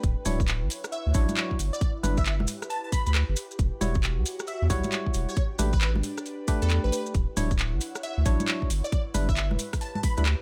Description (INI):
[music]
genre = UK garage, two-step garage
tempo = 135 BPM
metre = 4/4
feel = swing 64% on 16ths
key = unclear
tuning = A4 = 440 Hz
[part]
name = percussive organ stab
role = stabs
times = 0.0-10.2 s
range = F#3 to C#5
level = -35 LUFS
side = equal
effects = chorus, digital delay
[part]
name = saturated sub bass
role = bass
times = 0.0-10.4 s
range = D1 to E2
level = -28 LUFS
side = equal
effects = none
[part]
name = electronic kick drum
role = drums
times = 0.0-10.1 s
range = none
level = -29 LUFS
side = equal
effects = small room reverb
[part]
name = house drum kit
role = drums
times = 0.0-10.4 s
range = congas, handclaps, hi-hat, rim click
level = -34 LUFS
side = equal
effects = small room reverb
[part]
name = maracas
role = percussion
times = 0.0-10.4 s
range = none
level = -41 LUFS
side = equal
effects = none
[part]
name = airy breathy pad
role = texture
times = 0.0-10.4 s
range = D4 to F#5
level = -42 LUFS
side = equal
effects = chorus, sidechain pumping
[part]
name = plucky unison lead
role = melody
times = 0.9-10.2 s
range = A4 to B5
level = -38 LUFS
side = equal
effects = lush chorus
[sound]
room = little or no reverb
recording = none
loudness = -27 LUFS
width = mono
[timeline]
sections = 0.0-10.4 A section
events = none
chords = 0.0 Dmaj9; 1.6 G6; 3.6 Em69; 5.4 A9sus4; 7.1 Dmaj9; 8.7 G6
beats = | 0.04 0.48 0.92 1.37 | 1.81 2.26 2.70 3.15 | 3.59 4.04 4.48 4.92 | 5.37 5.81 6.26 6.70 | 7.15 7.59 8.04 8.48 | 8.92 9.37 9.81 10.26